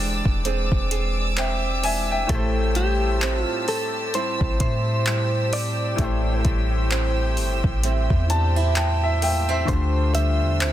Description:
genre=contemporary R&B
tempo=65 BPM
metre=4/4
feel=swing 58% on 16ths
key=unclear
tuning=A4 = 441 Hz
part: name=clear baby grand piano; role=accompaniment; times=0.0-10.7 s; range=A2 to A5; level=-28 LUFS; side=left 4 dB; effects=none
part: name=warm chamber string section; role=sustained chords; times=0.0-10.7 s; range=G#3 to E6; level=-30 LUFS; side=right 1 dB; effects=sidechain pumping
part: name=fingerpicked old ladder-braced acoustic guitar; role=arpeggios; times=0.0-10.7 s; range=A2 to G#4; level=-30 LUFS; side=right 8 dB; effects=tape echo
part: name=soft 808-style bass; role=bass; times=0.0-10.7 s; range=E1 to A2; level=-23 LUFS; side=equal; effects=none
part: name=smooth R&B drum kit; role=drums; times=0.3-10.7 s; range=handclaps, hi-hat, kick drum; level=-25 LUFS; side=equal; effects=none
part: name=direct-recorded clean electric guitar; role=melody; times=2.3-10.7 s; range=G4 to E5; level=-28 LUFS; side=equal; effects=tape echo
room=digital ambience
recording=dense, heavily limited modern master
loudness=-20 LUFS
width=side -12 dB against mid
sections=0.0-10.7 A section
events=grand piano fill 7.8-9.7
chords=0.0 E7alt; 2.3 Am7; 9.7 Dm11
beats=0.45 1.37 | 2.29 3.22 4.14 5.06 | 5.99 6.91 7.83 8.76 | 9.68 10.60

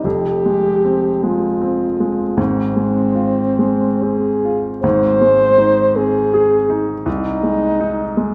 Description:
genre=classical, romantic duo for French horn and grand piano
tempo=65-82 BPM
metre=3/4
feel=rubato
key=F minor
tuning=A4 = 443 Hz
part: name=mellow French horn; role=melody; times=0.0-8.3 s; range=C4 to C5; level=-18 LUFS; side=equal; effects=none
part: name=warm grand piano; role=accompaniment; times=0.0-8.3 s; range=F1 to Ab4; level=-20 LUFS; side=equal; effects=none
room=wet recital hall reverb, RT60 1.6 s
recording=none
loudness=-16 LUFS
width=mono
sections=0.0-8.3 A section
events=none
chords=0.0 Fm; 2.4 Fm/Ab; 4.8 Ab; 7.1 Ab/C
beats=| 0.04 0.85 1.62 | 2.38 3.16 4.04 | 4.84 5.59 6.34 | 7.07 7.81

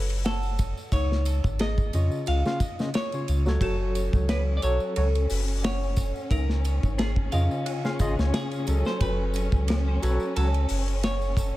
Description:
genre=trip hop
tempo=89 BPM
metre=4/4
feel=swing 55% on 16ths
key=unclear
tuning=A4 = 440 Hz
part: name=semi-hollow electric guitar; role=melody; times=0.0-11.6 s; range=G#4 to E#5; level=-34 LUFS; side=right 1 dB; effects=tape echo
part: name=dark detuned synth bell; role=arpeggios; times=0.0-11.6 s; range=D#4 to F#5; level=-37 LUFS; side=left 3 dB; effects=chorus, phaser, tape echo
part: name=soft dub sub bass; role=bass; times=0.0-11.5 s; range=F#1 to E#2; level=-25 LUFS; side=equal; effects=tube saturation
part: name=modern studio drum kit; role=drums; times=0.1-11.5 s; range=hi-hat, kick drum, ride cymbal, snare drum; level=-29 LUFS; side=equal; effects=none
part: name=tambourine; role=percussion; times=0.1-11.5 s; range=none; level=-48 LUFS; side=left 1 dB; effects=none
part: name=barky tine electric piano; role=accompaniment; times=1.9-10.5 s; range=C#3 to E#5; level=-31 LUFS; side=equal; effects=tremolo, tape echo
part: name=warm symphonic string section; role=sustained chords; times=3.6-11.6 s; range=C#4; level=-36 LUFS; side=left 3 dB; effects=vintage 12-bit sampler grit
room=small room reverb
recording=echo-heavy mix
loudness=-23 LUFS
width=side -16 dB against mid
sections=0.0-11.6 A section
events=none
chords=0.0 F#m; 0.9 C#add9; 3.6 F#m; 6.3 C#add9; 9.0 F#m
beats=0.25 | 0.92 1.59 2.27 2.94 | 3.62 4.29 4.97 5.64 | 6.31 6.99 7.66 8.34 | 9.01 9.69 10.36 11.03

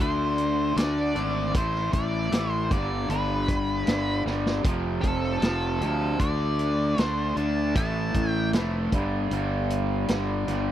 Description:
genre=blues rock power trio and southern rock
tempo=77 BPM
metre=4/4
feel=straight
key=unclear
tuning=A4 = 440 Hz
part: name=octave-fuzz lead guitar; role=melody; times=0.0-8.5 s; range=A4 to A5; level=-30 LUFS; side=equal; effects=wah, distortion, slapback echo
part: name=raw garage guitar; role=riff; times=0.0-10.7 s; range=F2 to D4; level=-28 LUFS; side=equal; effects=overdrive
part: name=fuzz fingered electric bass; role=bass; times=0.0-10.7 s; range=F1 to D2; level=-28 LUFS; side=equal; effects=overdrive
part: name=vintage drum kit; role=drums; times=0.4-10.7 s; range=hi-hat, kick drum, snare drum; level=-26 LUFS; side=equal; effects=none
room=little or no reverb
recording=dry, close 1970s-style studio recording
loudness=-23 LUFS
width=side -11 dB against mid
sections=0.0-10.7 A section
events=drum fill 4.3-4.6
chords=0.0 D5; 1.5 A5; 2.7 G; 4.6 F; 6.2 D5; 7.8 A5; 8.9 G5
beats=0.77 | 1.54 2.32 3.09 3.87 | 4.65 5.42 6.20 6.98 | 7.75 8.53 9.31 10.09

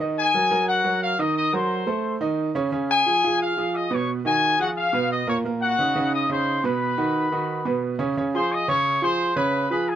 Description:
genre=latin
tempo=176 BPM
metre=4/4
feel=straight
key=unclear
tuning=A4 = 440 Hz
part: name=clear baby grand piano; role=accompaniment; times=0.0-10.0 s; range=Bb2 to Eb5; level=-24 LUFS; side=right 3 dB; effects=none
part: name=bright trumpet section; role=melody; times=0.2-10.0 s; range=Gb4 to Eb6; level=-22 LUFS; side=left 3 dB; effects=none
room=little or no reverb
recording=dry, close 1970s-style studio recording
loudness=-20 LUFS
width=side -10 dB against mid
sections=0.0-8.2 A section; 8.2-10.0 B section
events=none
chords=0.0 Ebm; 1.4 Cm7b5; 2.0 Dbsus2; 2.7 Db9; 4.1 Abm7; 4.8 Db7; 5.4 Gb6; 6.8 B; 8.2 Dbmaj7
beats=| 0.00 0.34 0.68 1.02 | 1.36 1.70 2.04 2.38 | 2.72 3.06 3.40 3.74 | 4.08 4.42 4.76 5.11 | 5.45 5.79 6.13 6.47 | 6.81 7.15 7.49 7.83 | 8.17 8.51 8.86 9.20 | 9.54 9.88

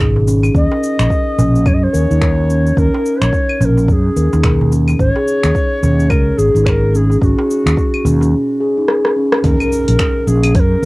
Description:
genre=organic downtempo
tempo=108 BPM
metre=4/4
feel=swing 60% on 16ths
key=Eb minor pentatonic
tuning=A4 = 440 Hz
part: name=steel tongue drum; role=arpeggios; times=0.0-10.9 s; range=Db4 to Bb4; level=-17 LUFS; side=equal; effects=cassette tape, analog delay
part: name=fretless electric bass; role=bass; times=0.0-10.9 s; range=Ab1 to Gb2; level=-14 LUFS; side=equal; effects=none
part: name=deep house drum kit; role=drums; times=0.0-10.9 s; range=cabasa, claves, finger snaps, hi-hat, rim click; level=-21 LUFS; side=equal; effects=overdrive, cassette tape
part: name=darbuka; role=percussion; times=0.0-8.3 s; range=none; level=-22 LUFS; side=right 1 dB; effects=none
part: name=electronic kick drum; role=drums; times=0.5-10.7 s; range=none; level=-16 LUFS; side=equal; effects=overdrive, cassette tape
part: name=mellow Native American-style cedar flute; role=melody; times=0.6-10.9 s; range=Gb4 to Eb5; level=-20 LUFS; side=left 1 dB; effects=cassette tape, analog delay
part: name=impact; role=sound effects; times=9.4-10.9 s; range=none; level=-25 LUFS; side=equal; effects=none
room=moderate booth ambience, RT60 0.2 s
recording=home recording on cassette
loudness=-11 LUFS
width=side -21 dB against mid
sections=0.0-9.4 A section; 9.4-10.9 B section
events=drum fill 8.9-9.4; impact 9.4-10.9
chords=0.0 Absus4; 0.6 Eb7(no3); 5.0 Ab7sus4; 9.4 Ebm7 (rootless)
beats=0.00 | 0.55 1.11 1.66 2.22 | 2.77 3.33 3.89 4.44 | 5.00 5.55 6.11 6.66 | 7.22 7.78 8.33 8.89 | 9.44 10.00 10.55

